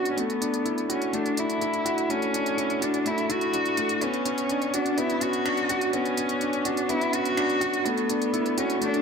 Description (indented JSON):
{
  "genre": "piano and strings electronica",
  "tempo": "125 BPM",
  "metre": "4/4",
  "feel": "straight",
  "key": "unclear",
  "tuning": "A4 = 440 Hz",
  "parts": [
    { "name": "dark cello", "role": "melody", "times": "0.0-9.0 s", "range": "B3 to F#4", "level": "-26 LUFS", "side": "equal", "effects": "low-pass filter, digital delay" },
    { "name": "clear concert grand piano", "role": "riff", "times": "0.0-9.0 s", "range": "A3 to F#4", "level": "-26 LUFS", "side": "equal", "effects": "digital delay" },
    { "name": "deep house drum kit", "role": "drums", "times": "0.1-9.0 s", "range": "finger snaps, hi-hat", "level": "-34 LUFS", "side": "right 2 dB", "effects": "high-pass filter on hats, high-pass filter on snare, high-pass filter on room" }
  ],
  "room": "wet concert hall reverb, RT60 1.9 s, studio ambience",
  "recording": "none",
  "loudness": "-23 LUFS",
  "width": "side -6 dB against mid",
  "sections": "0.0-9.0 A section",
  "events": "build-up 0.0-9.0",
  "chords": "0.2 Dadd9; 4.0 Bmadd9; 7.9 Dadd9"
}